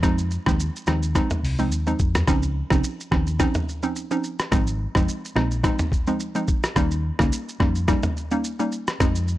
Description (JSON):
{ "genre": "afrobeats", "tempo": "107 BPM", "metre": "4/4", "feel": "swing 55% on 16ths", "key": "unclear", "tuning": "A4 = 440 Hz", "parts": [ { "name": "hollow square pluck", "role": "accompaniment", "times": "0.0-9.4 s", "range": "F3 to Eb4", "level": "-25 LUFS", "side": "right 1 dB", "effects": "chorus" }, { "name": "hollow-body short-scale fingered electric bass", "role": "bass", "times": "0.0-9.3 s", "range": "F1 to F2", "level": "-24 LUFS", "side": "equal", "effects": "none" }, { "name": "lo-fi sampler-style drum kit", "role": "drums", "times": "0.0-9.4 s", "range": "hi-hat, kick drum, rim click, shaker, toms", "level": "-23 LUFS", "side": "equal", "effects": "none" } ], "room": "digital ambience", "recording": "dry, gritty hardware recording", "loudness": "-20 LUFS", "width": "side -15 dB against mid", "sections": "0.0-2.3 A section; 2.3-9.4 B section", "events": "none", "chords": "0.0 Fm7; 2.3 Dbmaj9; 4.5 Ab6; 6.8 Eb7", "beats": "| 0.03 0.59 1.15 1.72 | 2.28 2.84 3.40 3.96 | 4.52 5.08 5.64 6.20 | 6.76 7.32 7.88 8.44 | 9.01" }